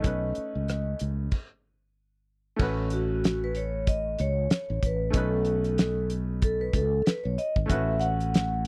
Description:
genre	lush 1970s-style soul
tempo	94 BPM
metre	4/4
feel	swing 58% on 16ths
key	A lydian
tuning	A4 = 440 Hz
part	vibraphone with medium hard mallets	melody	0.0-8.7 s	F#4 to F#5	-32 LUFS	equal	none
part	clear baby grand piano	accompaniment	0.0-8.7 s	A3 to B4	-37 LUFS	equal	none
part	fretless electric bass	bass	0.0-8.7 s	G#1 to C#2	-31 LUFS	equal	analog chorus
part	cloth-damped thuddy drum kit	drums	0.0-8.7 s	crash cymbal, hi-hat, kick drum, rim click, snare drum	-28 LUFS	equal	none
room	little or no reverb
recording	dry, close 1970s-style studio recording, faint mains hum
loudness	-28 LUFS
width	mono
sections	0.0-2.6 A section; 2.6-8.7 B section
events	stop 1.3-2.6; vibraphone solo 2.6-8.7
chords	0.0 B9; 2.6 A69; 5.1 B9; 7.7 A69

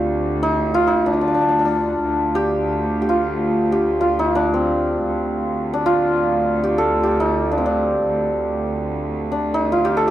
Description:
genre	Persian modal ensemble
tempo	free time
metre	none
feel	none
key	D dastgah shur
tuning	A4 = 439 Hz
part	santur	melody	0.0-10.1 s	C4 to A4	-18 LUFS	equal	none
part	clear studio cello section	drone	0.0-10.1 s	D2	-25 LUFS	right 1 dB	none
room	small room reverb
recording	dry, close 1970s-style studio recording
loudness	-17 LUFS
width	side -13 dB against mid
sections	0.0-2.0 A section; 2.0-10.1 A section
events	none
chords	none

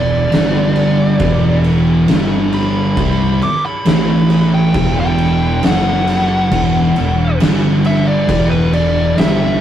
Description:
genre	stoner and doom metal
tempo	68 BPM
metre	4/4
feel	straight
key	E minor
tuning	A4 = 441 Hz
part	fuzz lead guitar	melody	0.0-9.6 s	B4 to D6	-19 LUFS	equal	distortion
part	thick fuzz guitar	riff	0.0-9.6 s	E2 to C4	-17 LUFS	left 3 dB	distortion
part	thick fuzz guitar	riff	0.0-9.6 s	E2 to C4	-17 LUFS	right 3 dB	distortion
part	fuzz fingered electric bass	bass	0.0-9.6 s	E1 to C2	-19 LUFS	equal	overdrive
part	oversized low-tuned drum kit	drums	0.3-9.4 s	crash cymbal, kick drum, snare drum	-18 LUFS	equal	none
room	light reverb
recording	rough rehearsal-room recording, warm saturation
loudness	-11 LUFS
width	side -10 dB against mid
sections	0.0-9.6 A section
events	lead electric guitar solo 0.0-9.6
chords	0.3 G5; 1.2 E5; 2.1 G5; 3.0 Em (rootless); 3.9 A5; 4.8 Em; 5.6 F#5; 6.5 E5; 7.4 G5; 8.3 E5

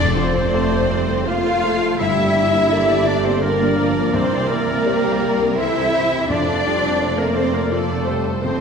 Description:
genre	cinematic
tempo	84 BPM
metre	3/4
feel	rubato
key	F major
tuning	A4 = 440 Hz
part	rich studio violin section	melody	0.0-8.6 s	A4 to F5	-28 LUFS	left 4 dB	none
part	hollow small flute group	second line	0.0-8.6 s	A4 to F5	-27 LUFS	left 2 dB	none
part	rich studio violin section	second line	0.0-8.6 s	A4 to F5	-28 LUFS	left 3 dB	none
part	warm clarinet	second line	0.0-8.6 s	A4 to F5	-26 LUFS	left 1 dB	none
part	felt-muted upright piano	accompaniment	0.0-8.6 s	C2 to C5	-25 LUFS	left 2 dB	none
part	rich studio viola section	accompaniment	0.0-8.6 s	Bb3 to E5	-25 LUFS	right 2 dB	none
part	concert harp	arpeggios	0.0-8.6 s	F2 to A4	-28 LUFS	left 1 dB	none
part	rich studio cello section	bass	0.0-8.6 s	A3 to F4	-23 LUFS	right 3 dB	none
part	rich studio double bass section	bass	0.0-8.6 s	F1 to C2	-27 LUFS	right 4 dB	none
part	timpani	percussion	0.0-0.9, 4.1-7.3 s	F2 to C3	-29 LUFS	left 2 dB	none
part	mellow French horn section	sustained chords	0.5-8.6 s	E3 to A4	-25 LUFS	left 1 dB	none
room	wet scoring stage reverb, RT60 1.5 s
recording	heard from further back in the room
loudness	-16 LUFS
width	side -6 dB against mid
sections	0.0-8.6 A section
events	none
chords	0.0 F; 2.0 Gm; 4.1 C7; 6.3 F

